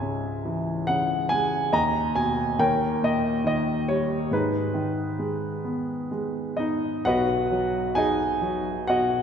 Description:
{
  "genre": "classical, lyrical solo piano",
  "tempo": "63-71 BPM",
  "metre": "3/4",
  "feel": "rubato",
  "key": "G# minor",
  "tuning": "A4 = 439 Hz",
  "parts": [
    { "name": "warm grand piano", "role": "solo", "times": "0.0-9.2 s", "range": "B1 to A#5", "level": "-23 LUFS", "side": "equal", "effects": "none" }
  ],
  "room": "wet church reverb, RT60 2.8 s",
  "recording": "recorded in a church or concert hall",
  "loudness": "-23 LUFS",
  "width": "side -7 dB against mid",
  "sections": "0.0-7.1 A section; 7.1-9.2 B section",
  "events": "none",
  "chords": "0.0 C#m; 1.7 G#m/D#; 2.6 D#7; 4.3 G#m; 7.1 B",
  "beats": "0.01 0.88 | 1.72 2.59 3.46 | 4.32 5.20 6.12 | 7.06 7.97 8.89"
}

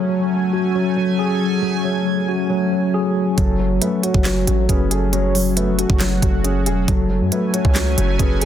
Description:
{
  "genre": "hip hop, trap",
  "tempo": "137 BPM",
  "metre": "4/4",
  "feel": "half-time",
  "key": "F# minor",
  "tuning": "A4 = 440 Hz",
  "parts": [
    { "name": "sweeping resonant pad", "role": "sustained chords", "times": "0.0-8.5 s", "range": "F#3 to G#5", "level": "-26 LUFS", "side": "equal", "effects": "chorus" },
    { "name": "mellow tine electric piano", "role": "arpeggios", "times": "0.0-8.5 s", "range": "F#3 to G#4", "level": "-20 LUFS", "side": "left 1 dB", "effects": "medium stereo tremolo, digital delay" },
    { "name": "soft octave-layered synth lead", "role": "second line", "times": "3.4-8.5 s", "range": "A4 to C#5", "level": "-28 LUFS", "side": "left 2 dB", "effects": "chorus, tremolo, digital delay" },
    { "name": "dark concert grand piano", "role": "accompaniment", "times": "3.4-8.5 s", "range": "F#3 to G#4", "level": "-24 LUFS", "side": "left 2 dB", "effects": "none" },
    { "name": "hard-hitting 808-style bass", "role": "bass", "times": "3.4-8.5 s", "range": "E1 to F#2", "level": "-20 LUFS", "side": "right 1 dB", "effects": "none" },
    { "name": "trap drum kit", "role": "drums", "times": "3.4-8.5 s", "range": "handclaps, hi-hat, kick drum, snare drum", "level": "-19 LUFS", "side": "right 1 dB", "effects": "none" }
  ],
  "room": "little or no reverb",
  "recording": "dense, heavily limited modern master",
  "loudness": "-16 LUFS",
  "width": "side -10 dB against mid",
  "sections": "0.0-8.5 A section",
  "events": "none",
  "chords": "0.0 F#madd9",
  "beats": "0.31 0.75 1.19 | 1.63 2.06 2.50 2.94 | 3.38 3.81 4.25 4.69 | 5.13 5.57 6.00 6.44 | 6.88 7.32 7.76 8.20"
}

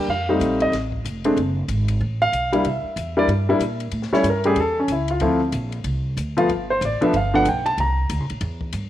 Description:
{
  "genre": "jazz piano trio",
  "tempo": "188 BPM",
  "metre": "4/4",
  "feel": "swing 61% on 8ths",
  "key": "C mixolydian",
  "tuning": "A4 = 442 Hz",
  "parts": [
    { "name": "warm baby grand piano", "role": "melody", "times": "0.0-8.3 s", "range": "F3 to Bb5", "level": "-19 LUFS", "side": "equal", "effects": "none" },
    { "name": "upright bass", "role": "bass", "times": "0.0-8.9 s", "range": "F1 to Bb2", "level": "-25 LUFS", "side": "right 1 dB", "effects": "none" },
    { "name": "compact cocktail drum kit", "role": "drums", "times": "0.4-8.8 s", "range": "hi-hat, kick drum, ride cymbal, snare drum", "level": "-36 LUFS", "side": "left 6 dB", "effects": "none" }
  ],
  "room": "light reverb, small room reverb",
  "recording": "1960s-style stereo",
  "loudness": "-19 LUFS",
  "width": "side -12 dB against mid",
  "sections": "0.0-8.9 A section",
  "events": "grand piano solo 0.0-8.9",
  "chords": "0.1 F9; 1.4 F#madd9; 2.6 C9; 3.9 A7; 5.2 Dm7; 6.5 G9; 7.8 C7",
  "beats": "| 0.09 0.41 0.73 1.05 | 1.37 1.69 2.01 2.33 | 2.65 2.97 3.29 3.61 | 3.93 4.25 4.57 4.89 | 5.21 5.53 5.85 6.17 | 6.49 6.81 7.13 7.45 | 7.77 8.09 8.41 8.73"
}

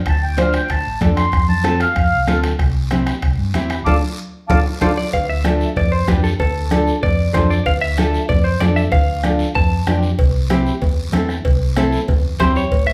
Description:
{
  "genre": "latin, cumbia",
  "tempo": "190 BPM",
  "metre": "4/4",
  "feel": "straight",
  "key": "D minor",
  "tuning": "A4 = 440 Hz",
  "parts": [
    { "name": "mellow accordion", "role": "melody", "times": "0.1-4.9 s", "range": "F5 to D6", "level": "-23 LUFS", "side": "equal", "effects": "none" },
    { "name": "hollow-body short-scale fingered electric bass", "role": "bass", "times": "0.1-12.9 s", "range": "A1 to G2", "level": "-22 LUFS", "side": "equal", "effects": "none" },
    { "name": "bombo", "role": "percussion", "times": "0.1-12.9 s", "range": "none", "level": "-23 LUFS", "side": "equal", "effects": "none" },
    { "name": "guiro", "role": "percussion", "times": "0.1-12.9 s", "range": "none", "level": "-38 LUFS", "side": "equal", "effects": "none" },
    { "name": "timbales and cowbell", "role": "percussion", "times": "0.1-12.9 s", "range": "none", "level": "-31 LUFS", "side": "equal", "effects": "none" },
    { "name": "nylon-string guitar", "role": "accompaniment", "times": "0.4-12.6 s", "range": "C4 to C5", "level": "-24 LUFS", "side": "equal", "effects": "none" },
    { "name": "congas", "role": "percussion", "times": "0.4-12.9 s", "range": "none", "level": "-27 LUFS", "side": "equal", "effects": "none" },
    { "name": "semi-hollow electric guitar", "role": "second line", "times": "4.8-10.0, 12.4-12.9 s", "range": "A4 to A5", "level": "-24 LUFS", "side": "equal", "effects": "none" }
  ],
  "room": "moderate large studio reverb, RT60 0.8 s",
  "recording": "band playing live in one room",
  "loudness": "-17 LUFS",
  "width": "mono",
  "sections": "0.0-5.1 A section; 5.1-12.9 B section",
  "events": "band accent 3.9-5.1; drum fill 4.7-5.1; clean electric guitar solo 5.1-12.9",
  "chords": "0.0 Dm; 1.3 F; 2.6 C; 3.9 Dm; 10.2 C",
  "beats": "| 0.06 0.38 0.70 1.01 | 1.33 1.65 1.96 2.28 | 2.60 2.91 3.23 3.55 | 3.86 4.18 4.50 4.81 | 5.13 5.45 5.76 6.08 | 6.40 6.71 7.03 7.34 | 7.66 7.97 8.29 8.61 | 8.92 9.24 9.55 9.87 | 10.19 10.50 10.82 11.13 | 11.45 11.77 12.08 12.40 | 12.71"
}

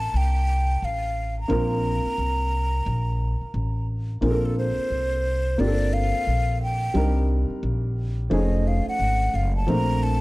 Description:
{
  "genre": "hip hop",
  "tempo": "88 BPM",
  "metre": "4/4",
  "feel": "swing 62% on 16ths",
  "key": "Bb major",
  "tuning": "A4 = 438 Hz",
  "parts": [
    { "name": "breathy mellow concert flute", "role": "melody", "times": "0.0-10.2 s", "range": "A4 to Bb5", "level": "-27 LUFS", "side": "equal", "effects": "none" },
    { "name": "dark upright piano", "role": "accompaniment", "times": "0.0-10.2 s", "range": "F3 to Bb4", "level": "-27 LUFS", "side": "equal", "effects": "none" },
    { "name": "upright bass", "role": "bass", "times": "0.0-10.2 s", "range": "F1 to C2", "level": "-24 LUFS", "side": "equal", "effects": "none" }
  ],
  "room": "light reverb, studio reverb",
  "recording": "dark, warm production",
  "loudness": "-21 LUFS",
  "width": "side -20 dB against mid",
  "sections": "0.0-4.2 A section; 4.2-10.2 B section",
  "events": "flute solo 4.2-10.2",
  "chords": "0.0 Bbmaj9; 5.6 Gm11; 7.0 Cm7; 8.3 F7alt; 9.7 Bbmaj9",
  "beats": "0.14 0.82 | 1.50 2.18 2.87 3.55 | 4.23 4.91 5.59 6.27 | 6.96 7.64 8.32 9.00 | 9.68"
}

